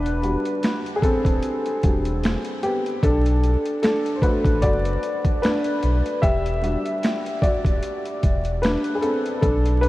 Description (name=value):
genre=lo-fi hip hop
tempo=75 BPM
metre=4/4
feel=swing 55% on 16ths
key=E minor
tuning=A4 = 440 Hz
part: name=dark upright piano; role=accompaniment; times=0.0-9.9 s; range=G3 to E5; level=-22 LUFS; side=left 1 dB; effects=cassette tape, low-pass filter
part: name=sub bass with octave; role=bass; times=0.0-9.9 s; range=D1 to B1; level=-22 LUFS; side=equal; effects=none
part: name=boom bap sampler-style drum kit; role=drums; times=0.1-9.9 s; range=finger snaps, hi-hat, kick drum, snare drum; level=-23 LUFS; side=equal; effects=overdrive
room=moderate huge ambient reverb, RT60 6.8 s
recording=dreamy mix soaked in reverb, vinyl crackle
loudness=-19 LUFS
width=side -17 dB against mid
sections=0.0-9.9 A section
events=upright piano solo 0.0-9.9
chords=0.0 Em9; 3.0 Bm7; 6.2 Em9